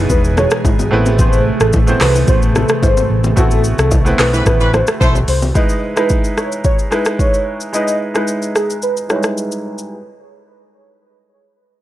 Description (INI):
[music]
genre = afrobeats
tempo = 110 BPM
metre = 4/4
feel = straight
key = unclear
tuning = A4 = 439 Hz
[part]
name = clear grand piano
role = accompaniment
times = 0.0-9.9 s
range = G3 to C#5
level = -20 LUFS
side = right 1 dB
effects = low-pass filter
[part]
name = airy breathy pad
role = sustained chords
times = 0.0-5.5 s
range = B2 to D#5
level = -23 LUFS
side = right 1 dB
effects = chorus
[part]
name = hollow-body short-scale fingered electric bass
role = bass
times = 0.0-5.5 s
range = E1 to C2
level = -16 LUFS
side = equal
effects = none
[part]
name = warm velvety synth lead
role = melody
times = 0.1-9.2 s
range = G#4 to D#5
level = -20 LUFS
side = equal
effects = chorus, low-pass filter, tape echo
[part]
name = afro-pop drum kit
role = drums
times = 0.1-9.9 s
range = handclaps, hi-hat, kick drum, rim click, shaker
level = -16 LUFS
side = equal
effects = none
[part]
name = congas and bongos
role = percussion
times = 0.1-5.5 s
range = none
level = -23 LUFS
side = left 2 dB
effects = none
[part]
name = warm horn section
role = second line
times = 4.3-5.2 s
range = E3 to C5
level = -20 LUFS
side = equal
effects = none
[sound]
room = little or no reverb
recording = dry, gritty hardware recording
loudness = -12 LUFS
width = side -14 dB against mid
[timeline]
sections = 0.0-5.6 A section; 5.6-9.9 B section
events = band accent 3.4-5.6; filter sweep 5.6-9.9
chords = 0.0 Emaj7; 0.9 Amadd9; 5.6 Emaj7